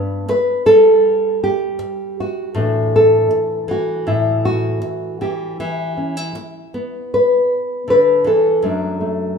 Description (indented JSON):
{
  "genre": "folk, solo fingerstyle acoustic guitar",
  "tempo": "79 BPM",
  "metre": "4/4",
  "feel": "straight",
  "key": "unclear",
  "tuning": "A4 = 440 Hz",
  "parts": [
    { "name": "nylon-string guitar", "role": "solo", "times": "0.0-9.4 s", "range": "F#2 to B4", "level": "-14 LUFS", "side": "equal", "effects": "none" }
  ],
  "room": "moderate recital hall reverb, RT60 1.6 s",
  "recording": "recorded in a church or concert hall",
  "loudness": "-14 LUFS",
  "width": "side -6 dB against mid",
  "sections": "0.0-9.4 A section",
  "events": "none",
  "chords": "0.0 G; 2.6 Asus4; 4.1 A5; 5.6 Em; 8.6 D/F#"
}